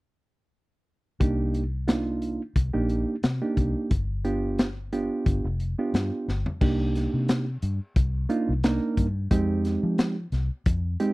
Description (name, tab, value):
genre	straight-eighth soul blues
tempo	89 BPM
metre	4/4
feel	swing 55% on 16ths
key	C minor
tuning	A4 = 438 Hz
part	reed electric piano	accompaniment	1.2-11.1 s	Ab3 to Bb4	-26 LUFS	right 2 dB	none
part	vintage muted fingered electric bass	bass	1.2-11.0 s	F1 to F3	-27 LUFS	left 1 dB	none
part	crunchy breakbeat drum kit	drums	1.2-11.1 s	crash cymbal, hi-hat, kick drum, snare drum, toms	-25 LUFS	left 1 dB	none
room	little or no reverb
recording	dry, close 1970s-style studio recording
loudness	-24 LUFS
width	side -20 dB against mid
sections	1.2-6.6 A section; 6.6-11.1 B section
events	drum fill 6.3-6.6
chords	1.2 Cm9; 3.9 G7; 6.6 Cm7; 9.3 Fm7